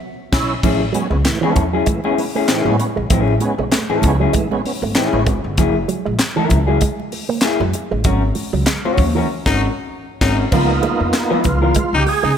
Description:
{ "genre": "funk", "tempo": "97 BPM", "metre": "4/4", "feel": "swing 56% on 16ths", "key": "unclear", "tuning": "A4 = 439 Hz", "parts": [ { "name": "overdriven tonewheel organ", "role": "stabs", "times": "0.3-5.3, 10.5-12.4 s", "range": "A2 to Ab4", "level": "-21 LUFS", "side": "right 3 dB", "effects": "chorus vibrato, slow rotary speaker" }, { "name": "upright bass", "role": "bass", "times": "0.3-12.3 s", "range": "Gb1 to Db3", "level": "-20 LUFS", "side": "equal", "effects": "tube saturation" }, { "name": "tight funk drum kit", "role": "drums", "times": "0.3-12.2 s", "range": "crash cymbal, handclaps, hi-hat, kick drum, snare drum", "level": "-20 LUFS", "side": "left 1 dB", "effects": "none" }, { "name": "electric guitar through a small old amp", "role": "accompaniment", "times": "0.6-11.7 s", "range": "Bb3 to Db5", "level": "-21 LUFS", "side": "left 4 dB", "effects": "spring reverb" }, { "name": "congas", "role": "percussion", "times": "0.6-12.2 s", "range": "none", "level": "-26 LUFS", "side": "right 5 dB", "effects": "none" }, { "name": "electric guitar with an envelope filter", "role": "riff", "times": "0.8-12.3 s", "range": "E3 to Cb4", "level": "-24 LUFS", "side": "right 6 dB", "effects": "none" }, { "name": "breathy baritone saxophone", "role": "second line", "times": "9.5-12.3 s", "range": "Eb4", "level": "-23 LUFS", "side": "left 5 dB", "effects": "none" } ], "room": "light reverb", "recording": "none", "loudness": "-15 LUFS", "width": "side -8 dB against mid", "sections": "0.6-10.5 A section; 10.5-12.4 B section", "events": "break 0.0-0.6; band accent 0.0-0.6, 8.1-10.5; tonewheel organ solo 10.5-12.4", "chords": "0.0 Cbsus4; 0.6 Amaj7; 5.6 Gb9; 8.1 Ab9sus4; 10.5 Db13" }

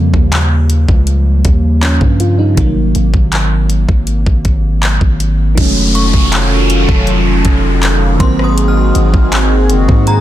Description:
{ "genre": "contemporary R&B", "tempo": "80 BPM", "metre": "4/4", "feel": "straight", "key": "unclear", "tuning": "A4 = 440 Hz", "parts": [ { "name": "FM electric piano with soft pad layer", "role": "accompaniment", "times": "0.0-10.2 s", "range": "C3 to F4", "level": "-17 LUFS", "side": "right 1 dB", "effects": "chorus" }, { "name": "long sustained 808-style bass", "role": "bass", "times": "0.0-10.2 s", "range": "F1 to Ab2", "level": "-12 LUFS", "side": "equal", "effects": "none" }, { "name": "smooth R&B drum kit", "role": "drums", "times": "0.1-10.2 s", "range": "crash cymbal, handclaps, hi-hat, kick drum, rim click", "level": "-13 LUFS", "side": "equal", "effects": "none" }, { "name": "chorused pulse-width pad", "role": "sustained chords", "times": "5.6-10.2 s", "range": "Eb3 to A4", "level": "-17 LUFS", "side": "equal", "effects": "none" }, { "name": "downlifter", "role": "sound effects", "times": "5.6-10.2 s", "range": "none", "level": "-19 LUFS", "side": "equal", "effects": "none" }, { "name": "synth chime", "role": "texture", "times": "6.0-10.2 s", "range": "Bb5 to F6", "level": "-23 LUFS", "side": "equal", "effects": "ensemble chorus, ping-pong delay" } ], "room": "little or no reverb", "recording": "dense, heavily limited modern master", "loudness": "-9 LUFS", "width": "side -13 dB against mid", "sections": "0.0-5.6 A section; 5.6-10.2 B section", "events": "none", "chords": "0.0 Eb7; 2.6 Ab9; 5.6 F7b9b13; 8.2 Ab7" }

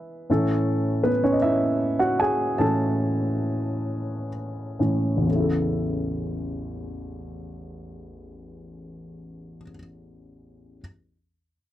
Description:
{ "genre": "pop", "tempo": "40-54 BPM (dotted quarters)", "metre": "6/8", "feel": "straight", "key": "A major", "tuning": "A4 = 440 Hz", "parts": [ { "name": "warm grand piano", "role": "solo", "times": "0.0-10.8 s", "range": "A1 to A5", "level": "-23 LUFS", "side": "equal", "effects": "none" } ], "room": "light reverb", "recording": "dry, close 1970s-style studio recording", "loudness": "-22 LUFS", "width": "side -13 dB against mid", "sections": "0.0-5.3 A section; 5.3-8.3 B section", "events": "grand piano solo 0.0-5.3; slowing down 0.3-5.3", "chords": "0.3 A" }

